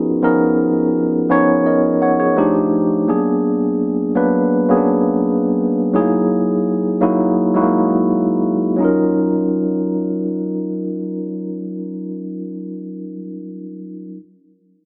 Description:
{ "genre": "R&B", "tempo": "84 BPM", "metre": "4/4", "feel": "straight", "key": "Eb minor", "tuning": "A4 = 440 Hz", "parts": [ { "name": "tine electric piano", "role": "solo", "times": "0.0-14.2 s", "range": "E#3 to F#5", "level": "-17 LUFS", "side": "equal", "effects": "none" } ], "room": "light reverb", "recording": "small speaker sound", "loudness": "-17 LUFS", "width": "mono", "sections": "0.0-8.8 A section; 8.8-11.7 B section", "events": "none", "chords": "0.0 Bmaj9#11; 2.4 F13; 3.1 Bb7b9b13; 5.9 Gb13; 8.8 Ebm9" }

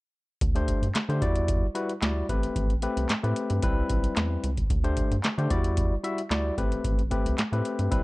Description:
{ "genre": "early-eighties boogie funk", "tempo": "112 BPM", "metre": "4/4", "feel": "straight", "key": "unclear", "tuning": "A4 = 440 Hz", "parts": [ { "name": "rubbery square bass", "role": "bass", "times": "0.4-8.0 s", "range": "A1 to D3", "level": "-28 LUFS", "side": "equal", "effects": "none" }, { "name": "booming analog drum machine", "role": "drums", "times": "0.4-8.0 s", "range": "handclaps, hi-hat, kick drum, snare drum", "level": "-27 LUFS", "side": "equal", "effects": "none" }, { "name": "overdriven tine electric piano", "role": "accompaniment", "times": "0.6-8.0 s", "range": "G3 to E5", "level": "-29 LUFS", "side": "left 2 dB", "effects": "none" } ], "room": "light reverb", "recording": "dark, warm production", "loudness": "-24 LUFS", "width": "side -21 dB against mid", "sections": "0.4-8.0 A section", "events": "none", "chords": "0.4 D7sus4; 1.2 Em9; 2.3 Am9; 3.6 Cmaj7; 4.7 D7sus4; 5.5 Em9; 6.6 Am9" }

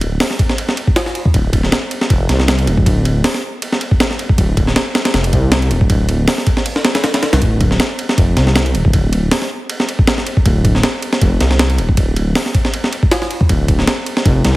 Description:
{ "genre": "drum and bass, jungle", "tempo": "158 BPM", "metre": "4/4", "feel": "swing 54% on 16ths", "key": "D minor", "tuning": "A4 = 440 Hz", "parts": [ { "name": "dark detuned saw bass", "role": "bass", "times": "0.0-14.6 s", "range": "D1 to C2", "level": "-14 LUFS", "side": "equal", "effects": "tube saturation" }, { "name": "breakbeat sampler-style drum kit", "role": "drums", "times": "0.0-14.5 s", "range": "hi-hat, kick drum, ride cymbal, snare drum", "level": "-14 LUFS", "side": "equal", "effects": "studio reverb" } ], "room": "light reverb", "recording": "heavily compressed radio sound, multiband compression", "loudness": "-12 LUFS", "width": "side -18 dB against mid", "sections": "0.0-14.6 A section", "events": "none", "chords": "none" }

